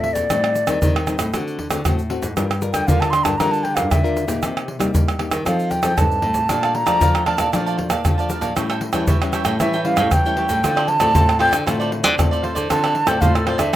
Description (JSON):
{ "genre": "samba and choro", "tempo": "116 BPM", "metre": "4/4", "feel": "straight", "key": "D minor", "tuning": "A4 = 442 Hz", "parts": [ { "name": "wooden flute", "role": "melody", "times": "0.0-13.8 s", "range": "A4 to C6", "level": "-19 LUFS", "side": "right 1 dB", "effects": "none" }, { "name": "nylon-string guitar", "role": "accompaniment", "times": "0.0-13.8 s", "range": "G2 to Bb4", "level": "-26 LUFS", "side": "left 4 dB", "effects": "none" }, { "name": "nylon-string guitar", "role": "bass", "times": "0.0-13.8 s", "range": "G2 to G3", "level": "-24 LUFS", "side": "equal", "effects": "none" }, { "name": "pandeiro, egg shaker, surdo and tamborim", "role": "percussion", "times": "0.0-13.8 s", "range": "none", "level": "-20 LUFS", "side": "right 1 dB", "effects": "none" }, { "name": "cavaquinho", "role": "accompaniment", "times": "6.5-13.8 s", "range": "F4 to A5", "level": "-25 LUFS", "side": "right 4 dB", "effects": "plate reverb" } ], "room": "moderate small room reverb, RT60 0.5 s", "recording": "rough home demo mix", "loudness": "-16 LUFS", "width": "side -13 dB against mid", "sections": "0.0-13.8 A section", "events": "flute solo 0.0-13.8", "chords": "0.3 Am7b5; 1.3 D7; 2.4 Gm7; 4.4 Cm7; 5.5 F7; 6.5 Bbmaj7; 8.6 A7; 10.6 Dm7", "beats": "| 0.31 0.82 1.34 1.85 | 2.37 2.88 3.40 3.91 | 4.43 4.95 5.46 5.98 | 6.50 7.01 7.53 8.05 | 8.56 9.08 9.60 10.12 | 10.63 11.15 11.67 12.19 | 12.70 13.22 13.74" }